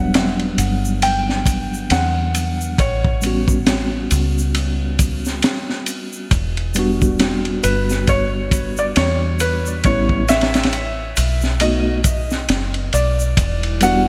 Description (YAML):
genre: trip hop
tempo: 68 BPM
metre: 4/4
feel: swing 58% on 16ths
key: E dorian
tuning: A4 = 440 Hz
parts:
  - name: felt-muted upright piano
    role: melody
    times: 0.0-14.1 s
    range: B4 to G5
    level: -25 LUFS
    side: equal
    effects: tape echo
  - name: mellow tine electric piano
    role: accompaniment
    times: 0.0-14.1 s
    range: F#3 to F#4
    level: -24 LUFS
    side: equal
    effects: harmonic tremolo, tape echo
  - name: deep dub fingered electric bass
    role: bass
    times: 0.0-14.1 s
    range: E1 to E2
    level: -24 LUFS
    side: equal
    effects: none
  - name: crunchy breakbeat drum kit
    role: drums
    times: 0.1-14.1 s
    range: kick drum, ride cymbal, snare drum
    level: -23 LUFS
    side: equal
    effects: gated reverb
  - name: egg shaker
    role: percussion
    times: 0.1-14.0 s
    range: none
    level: -34 LUFS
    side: equal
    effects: none
  - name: deep dark ambient pad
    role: sustained chords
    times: 13.5-14.1 s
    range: G3 to E4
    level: -32 LUFS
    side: equal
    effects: none
room: light reverb, small room ambience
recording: bright 1980s-style digital production, vinyl crackle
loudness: -18 LUFS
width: mono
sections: 0.0-13.4 A section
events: none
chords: 0.0 Em9; 2.8 A9; 6.3 Em9; 9.8 A9; 11.6 B7; 13.4 Em7